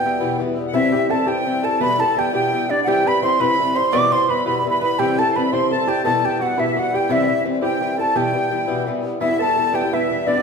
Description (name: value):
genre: celtic folk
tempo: 113 BPM (dotted quarters)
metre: 6/8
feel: straight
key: E minor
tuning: A4 = 440 Hz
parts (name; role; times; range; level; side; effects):
- wooden flute; melody; 0.0-10.4 s; D5 to D6; -20 LUFS; right 1 dB; none
- accordion; second line; 0.0-10.4 s; D5 to D6; -27 LUFS; left 1 dB; light tremolo tuning
- felt-muted upright piano; second line; 0.0-10.4 s; D4 to D5; -25 LUFS; right 6 dB; none
- fingerpicked swing-style acoustic guitar; accompaniment; 0.0-10.4 s; B2 to E4; -21 LUFS; left 4 dB; none
- pedal harmonium; drone; 0.0-0.8, 9.2-10.4 s; E2 to B2; -31 LUFS; left 2 dB; none
room: wet recital hall reverb, RT60 1.4 s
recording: recorded in a church or concert hall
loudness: -17 LUFS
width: side -5 dB against mid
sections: 0.8-9.2 A section; 9.2-10.4 B section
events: none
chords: 0.0 Em; 0.8 C; 1.8 Em/B; 2.9 C; 3.9 Em/B; 5.0 C; 6.0 Em/B; 7.1 C; 8.2 Em/B; 9.2 Em